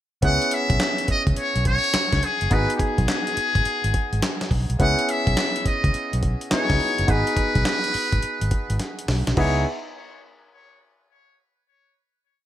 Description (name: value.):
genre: R&B, new jack swing.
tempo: 105 BPM.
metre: 4/4.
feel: swing 65% on 16ths.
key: C# minor.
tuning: A4 = 440 Hz.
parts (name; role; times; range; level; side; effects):
trumpet with metal mute; melody; 0.2-9.6 s; G4 to F#5; -24 LUFS; left 1 dB; none.
clear concert grand piano; accompaniment; 0.2-9.6 s; B3 to G#4; -27 LUFS; equal; none.
vintage muted fingered electric bass; bass; 0.2-9.6 s; F#1 to C#2; -23 LUFS; equal; none.
dusty soul sampler-style drum kit; drums; 0.2-9.5 s; crash cymbal, handclaps, hi-hat, kick drum, snare drum; -24 LUFS; equal; gated reverb.
room: light reverb.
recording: bright 1980s-style digital production.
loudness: -19 LUFS.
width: side -12 dB against mid.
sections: 0.2-9.4 verse; 9.4-11.7 final chord.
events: drum fill 8.8-9.4.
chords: 0.2 C#m7; 2.5 G#m7; 4.8 C#m7; 7.1 G#m7; 9.4 C#m7.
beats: | 0.23 0.80 1.37 1.94 | 2.51 3.08 3.65 4.23 | 4.80 5.37 5.94 6.51 | 7.08 7.66 8.23 8.80 | 9.37.